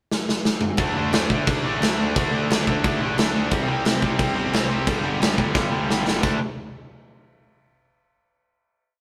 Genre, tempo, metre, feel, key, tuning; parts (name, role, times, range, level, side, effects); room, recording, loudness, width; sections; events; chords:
punk rock; 176 BPM; 4/4; straight; A4 = 441 Hz
big rock drum kit; drums; 0.1-6.3 s; crash cymbal, kick drum, snare drum, splash cymbal, toms; -25 LUFS; equal
distorted electric guitar; riff; 0.8-6.4 s; G2 to D4; -29 LUFS; equal; overdrive
distorted electric guitar; riff; 0.8-6.4 s; G2 to D4; -29 LUFS; equal; overdrive
fuzz picked electric bass; bass; 0.8-6.4 s; G1 to D2; -31 LUFS; equal; overdrive
light reverb; rough rehearsal-room recording; -22 LUFS; mono
0.0-0.8 pickup bar; 0.8-6.2 riff; 6.2-7.6 final chord
drum fill 0.1-0.8, 5.6-6.2
0.0 N.C.; 0.8 D5; 3.5 C5; 4.9 G5; 6.2 D5